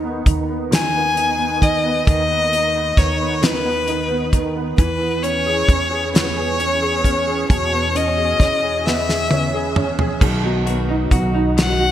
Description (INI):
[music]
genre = six-eight pop ballad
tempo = 44 BPM (dotted quarters)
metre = 6/8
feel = straight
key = unclear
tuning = A4 = 440 Hz
[part]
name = clear concert grand piano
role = accompaniment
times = 0.0-11.9 s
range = B2 to G#4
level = -22 LUFS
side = right 2 dB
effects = ensemble chorus
[part]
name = upright bass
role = bass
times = 0.0-11.9 s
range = B1 to E2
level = -24 LUFS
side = equal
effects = none
[part]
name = damped 70s drum kit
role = drums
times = 0.3-11.8 s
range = crash cymbal, hi-hat, kick drum, snare drum, toms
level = -18 LUFS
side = equal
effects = gated reverb
[part]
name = rich violin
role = melody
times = 0.7-11.9 s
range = B4 to G#5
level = -19 LUFS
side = left 2 dB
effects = digital delay
[part]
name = direct-recorded clean electric guitar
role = arpeggios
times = 10.2-11.9 s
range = D#3 to F#4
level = -26 LUFS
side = left 4 dB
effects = digital delay
[sound]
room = moderate lush hall reverb, RT60 2.6 s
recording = bright 1980s-style digital production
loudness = -16 LUFS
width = side -11 dB against mid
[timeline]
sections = 0.0-11.9 A section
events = drum fill 8.9-10.2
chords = 0.0 G#m/D# (rootless); 4.8 E6; 10.2 B